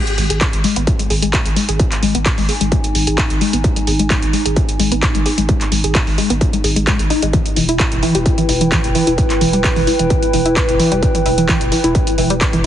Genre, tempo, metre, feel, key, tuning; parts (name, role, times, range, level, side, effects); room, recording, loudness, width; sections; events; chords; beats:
driving peak-time techno; 130 BPM; 4/4; straight; G# harmonic minor; A4 = 440 Hz
tight sequenced synth; riff; 0.0-12.7 s; E3 to G#4; -19 LUFS; left 1 dB; chorus, overdrive, sidechain pumping, ping-pong delay
warbly tape-like pad; texture; 1.2-12.7 s; D#4 to G#5; -21 LUFS; right 1 dB; chorus, built-in reverb, sidechain pumping
techno drum kit; drums; 0.1-12.7 s; handclaps, hi-hat; -20 LUFS; equal; sidechain pumping on hats, sidechain pumping on cymbals
saturated sub bass; bass; 0.2-12.6 s; E1 to G#1; -21 LUFS; equal; tube saturation, sidechain pumping, low-pass filter
electronic kick drum; drums; 0.4-12.5 s; -17 LUFS; equal; distortion
light reverb, digital ambience; heavily compressed radio sound, multiband compression, nothing above 10.9 kHz; -13 LUFS; side -11 dB against mid
0.0-12.7 A section
filter sweep on synth arpeggio sound 0.0-12.7
0.0 G#5; 7.3 Em
0.41 0.87 1.33 | 1.80 2.26 2.72 3.18 | 3.64 4.10 4.57 5.03 | 5.49 5.95 6.41 6.87 | 7.33 7.80 8.26 8.72 | 9.18 9.64 10.10 10.56 | 11.03 11.49 11.95 12.41